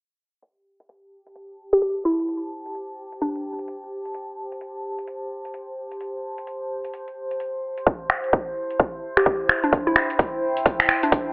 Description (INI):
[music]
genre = bass house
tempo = 129 BPM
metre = 4/4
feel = swing 61% on 16ths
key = A minor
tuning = A4 = 440 Hz
[part]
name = house drum kit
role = drums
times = 0.4-11.2 s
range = finger snaps, hi-hat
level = -19 LUFS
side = equal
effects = low-pass filter on hats, small room ambience, low-pass filter on snare
[part]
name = warbly tape-like pad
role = texture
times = 1.3-11.3 s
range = E4 to A5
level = -30 LUFS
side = equal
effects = chorus, built-in reverb, sidechain pumping
[part]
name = hollow square pluck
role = melody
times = 1.7-3.9, 9.2-11.3 s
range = D4 to G4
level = -22 LUFS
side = equal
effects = chorus
[part]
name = electronic kick drum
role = drums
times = 7.9-11.2 s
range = none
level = -18 LUFS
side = equal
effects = small room ambience
[sound]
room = moderate digital room reverb, RT60 1.3 s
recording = low-pass filter, telephone sound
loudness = -22 LUFS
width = side -32 dB against mid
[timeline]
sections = 0.4-11.3 A section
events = fade-in on ambient pad 0.4-11.3; filter sweep on drum 0.4-11.3; filter sweep 0.4-11.3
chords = 0.4 Am7; 7.9 C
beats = | 0.42 0.89 1.35 1.82 | 2.28 2.75 3.21 3.68 | 4.14 4.61 5.08 5.54 | 6.00 6.47 6.94 7.40 | 7.87 8.33 8.80 9.26 | 9.73 10.19 10.66 11.12